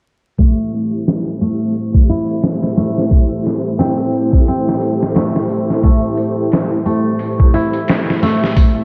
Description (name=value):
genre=trip hop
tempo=88 BPM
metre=4/4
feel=swing 58% on 16ths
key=A minor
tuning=A4 = 440 Hz
part: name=string machine, cellos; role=sustained chords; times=0.4-8.8 s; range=A3 to C5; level=-21 LUFS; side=equal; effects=ensemble chorus, vintage 12-bit sampler grit
part: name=nylon-string guitar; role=arpeggios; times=0.4-8.4 s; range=A3 to E4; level=-21 LUFS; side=equal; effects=low-pass filter, analog delay
part: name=trip hop sampler-style drum kit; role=drums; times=0.4-8.8 s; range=hi-hat, kick drum, snare drum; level=-16 LUFS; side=equal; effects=none
room=moderate lush hall reverb, RT60 2.0 s, digital ambience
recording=dreamy mix soaked in reverb, vinyl crackle, low-pass filter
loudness=-15 LUFS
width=mono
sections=0.4-8.8 A section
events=filter sweep on string machine 0.4-8.8; filter sweep on nylon-string guitar 0.4-8.8; filter sweep 0.4-8.8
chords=0.4 Am7